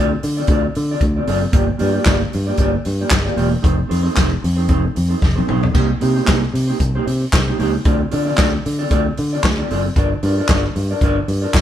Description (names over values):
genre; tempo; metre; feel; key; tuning
disco; 114 BPM; 4/4; swing 56% on 16ths; unclear; A4 = 440 Hz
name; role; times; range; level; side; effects
mellow electric guitar; accompaniment; 0.0-11.6 s; Bb3 to D5; -21 LUFS; right 1 dB; none
fingered electric bass; bass; 0.0-11.6 s; E1 to D3; -19 LUFS; equal; none
vintage drum kit; drums; 0.2-11.6 s; handclaps, hi-hat, kick drum, snare drum, splash cymbal, toms; -18 LUFS; equal; none
room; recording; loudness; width
moderate stone room reverb, RT60 1.0 s; band playing live in one room; -15 LUFS; side -11 dB against mid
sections
0.0-11.6 A section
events
drum fill 5.2-5.8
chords
0.0 Dm7; 1.5 Gm7; 3.6 F7; 5.8 Cm7; 7.9 Dm7; 10.0 Gm7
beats
0.48 1.01 | 1.53 2.06 2.59 3.12 | 3.64 4.17 4.70 5.22 | 5.75 6.28 6.80 7.33 | 7.86 8.38 8.91 9.44 | 9.96 10.49 11.02 11.54